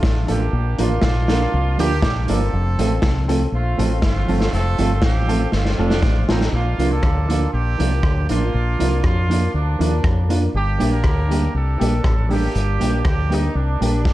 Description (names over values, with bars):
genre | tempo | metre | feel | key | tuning
ska | 120 BPM | 4/4 | straight | Bb major | A4 = 443 Hz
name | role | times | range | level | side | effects
warm horn section | melody | 0.0-14.1 s | F3 to Bb4 | -26 LUFS | right 3 dB | tape echo
mellow electric guitar | accompaniment | 0.0-14.1 s | F3 to G4 | -26 LUFS | right 5 dB | spring reverb
fingered electric bass | bass | 0.0-14.1 s | F1 to F2 | -20 LUFS | equal | none
raw garage drum kit | drums | 0.0-14.1 s | hi-hat, kick drum, rim click, snare drum | -22 LUFS | equal | none
dark upright piano | stabs | 0.3-14.0 s | Bb3 to Bb4 | -27 LUFS | left 2 dB | none
room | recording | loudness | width
light reverb, studio reverb | dark, warm production | -16 LUFS | side -15 dB against mid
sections
0.0-6.5 A section; 6.5-14.1 B section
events
drum fill 5.5-6.5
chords
0.0 Dm; 0.5 Bb; 2.5 F; 6.5 Bb; 10.5 Gm